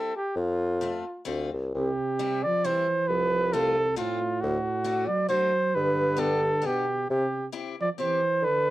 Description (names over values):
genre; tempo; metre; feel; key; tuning
alpine folk, alpine dance band; 134 BPM; 3/4; swing 54% on 8ths; C major; A4 = 445 Hz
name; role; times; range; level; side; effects
warm flugelhorn; melody; 0.0-8.7 s; F4 to D5; -26 LUFS; right 1 dB; cassette tape
picked acoustic archtop guitar; accompaniment; 0.0-8.2 s; G3 to G4; -35 LUFS; left 7 dB; none
mellow bassoon; bass; 0.4-8.7 s; C2 to D3; -29 LUFS; left 1 dB; none
dark euphonium; second line; 1.8-8.7 s; A2 to F#3; -32 LUFS; right 4 dB; tape echo
room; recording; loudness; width
light reverb; home recording on cassette; -24 LUFS; side -16 dB against mid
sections
0.0-1.7 A section; 1.7-8.7 B section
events
none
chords
0.4 F; 1.7 C; 3.1 F/C; 4.4 D; 5.7 Gadd9; 7.1 C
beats
| 0.36 0.82 1.28 | 1.74 2.19 2.64 | 3.09 3.54 3.98 | 4.42 4.86 5.30 | 5.74 6.19 6.64 | 7.09 7.53 7.98 | 8.42